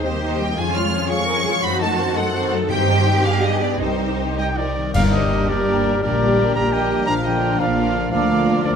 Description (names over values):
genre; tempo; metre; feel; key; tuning
classical, dramatic, fast romantic movement for symphony orchestra; 104-117 BPM (dotted quarters); 6/8; rubato; C minor, G minor from 4.9 s; A4 = 441 Hz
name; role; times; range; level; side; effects
rich symphonic violin section; melody; 0.0-8.8 s; Bb4 to F6; -26 LUFS; equal; none
dark symphonic violin section; second line; 0.0-8.8 s; D4 to Eb5; -27 LUFS; equal; none
warm symphonic viola section; accompaniment; 0.0-8.8 s; D3 to F4; -28 LUFS; right 2 dB; none
concert harp; arpeggios; 0.0-8.8 s; F2 to Eb6; -26 LUFS; left 11 dB; none
rich symphonic double bass section; bass; 0.0-8.8 s; G1 to G2; -24 LUFS; right 2 dB; none
warm symphonic cello section; bass; 0.0-8.8 s; D2 to Bb4; -26 LUFS; right 2 dB; none
timpani; percussion; 2.7-5.5 s; G2; -27 LUFS; left 3 dB; none
clear trumpet; stabs; 4.4-8.7 s; D5 to Bb5; -23 LUFS; right 1 dB; none
warm clarinet; second line; 4.9-8.8 s; D4 to G4; -29 LUFS; right 2 dB; none
mellow bassoon; accompaniment; 4.9-8.8 s; F3 to G3; -27 LUFS; right 3 dB; none
mellow French horn section; sustained chords; 4.9-8.8 s; Bb3 to G4; -26 LUFS; left 3 dB; none
clash cymbals and concert bass drum; percussion; 4.9-5.6 s; none; -27 LUFS; equal; none
clear oboe; second line; 5.0-8.8 s; Bb4; -29 LUFS; right 1 dB; none
hollow small flute group; second line; 5.0-8.8 s; Bb5 to D6; -29 LUFS; left 3 dB; none
room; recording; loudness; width
moderate recital hall reverb, RT60 1.5 s; none; -17 LUFS; side -7 dB against mid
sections
0.0-4.9 A section; 4.9-8.8 B section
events
band accent 4.9-5.3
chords
0.0 Cm/Eb; 0.6 Db/F; 1.6 F#dim7; 2.7 Cm/G; 3.2 G; 3.8 Cm; 4.9 Gm; 6.0 Gm/Bb; 7.1 Bb; 8.1 Bb/D